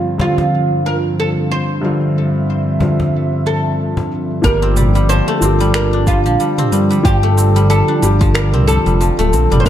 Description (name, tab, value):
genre	organic downtempo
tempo	92 BPM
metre	4/4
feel	swing 57% on 16ths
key	G dorian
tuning	A4 = 442 Hz
part	oud	melody	0.0-9.7 s	F4 to C5	-20 LUFS	right 1 dB	ping-pong delay
part	felt-muted upright piano	accompaniment	0.0-9.7 s	G2 to G4	-21 LUFS	left 2 dB	sidechain pumping, ping-pong delay
part	warm analog pad	sustained chords	0.0-9.7 s	G2 to E5	-19 LUFS	right 2 dB	lush chorus, sidechain pumping
part	deep house drum kit	drums	0.2-9.7 s	cabasa, finger snaps, toms	-21 LUFS	right 2 dB	low-pass filter on perc, small room reverb, low-pass filter on toms, low-pass filter on snare
part	cajon	percussion	0.2-4.1 s	none	-22 LUFS	left 1 dB	none
part	guzheng	arpeggios	4.4-9.7 s	F3 to D4	-19 LUFS	left 3 dB	ping-pong delay
part	smooth synth bass	bass	4.4-9.7 s	D1 to G2	-14 LUFS	equal	none
part	electronic kick drum	drums	4.4-9.7 s	none	-15 LUFS	equal	small room reverb
room	moderate echo chamber reverb, RT60 1.5 s, small room ambience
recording	dark, warm production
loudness	-12 LUFS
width	side -11 dB against mid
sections	0.0-4.4 A section; 4.4-9.7 B section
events	filter sweep on analog synth pad 0.0-4.4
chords	0.0 Dm7/G; 4.4 Gm7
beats	0.53 1.18 | 1.83 2.48 3.13 3.79 | 4.44 5.09 5.74 6.40 | 7.05 7.70 8.35 9.00 | 9.66